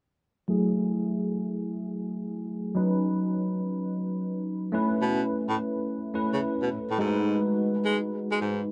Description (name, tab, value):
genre	R&B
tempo	106 BPM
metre	4/4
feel	swing 65% on 16ths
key	F# dorian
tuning	A4 = 440 Hz
part	bell-like tine electric piano	accompaniment	0.5-8.7 s	F#3 to B4	-29 LUFS	equal	analog chorus, low-pass filter
part	warm baritone saxophone	bass	5.0-8.6 s	G#2 to G#3	-30 LUFS	equal	none
room	wet lush hall reverb, RT60 3.0 s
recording	dreamy mix soaked in reverb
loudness	-28 LUFS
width	mono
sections	0.5-8.7 A section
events	filter sweep on tine electric piano 0.5-8.7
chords	0.5 F#m9; 2.7 C#9sus4; 4.7 B9sus4; 7.0 G#m7